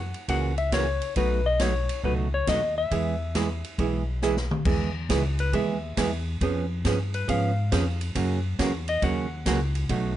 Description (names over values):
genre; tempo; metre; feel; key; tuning
country, western swing; 137 BPM; 4/4; swing 67% on 8ths; E major; A4 = 438 Hz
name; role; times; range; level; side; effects
clean lap steel guitar; melody; 0.0-9.8 s; B4 to F#5; -29 LUFS; left 4 dB; none
upright bass; bass; 0.0-10.2 s; B1 to G#2; -27 LUFS; left 1 dB; none
swinging big-band drum kit; drums; 0.1-10.0 s; crash cymbal, hi-hat, kick drum, ride cymbal, snare drum, toms; -32 LUFS; left 1 dB; none
archtop guitar, miked and amplified; accompaniment; 0.3-10.1 s; B2 to G#4; -28 LUFS; right 5 dB; none
room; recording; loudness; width
light reverb; nothing above 10.5 kHz; -23 LUFS; side -12 dB against mid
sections
0.0-4.7 A section; 4.7-10.2 B section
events
drum fill 4.2-4.7; electric slide guitar solo 4.7-10.2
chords
0.0 F#7; 1.2 B7; 2.9 E; 6.4 C#7/E#; 8.2 F#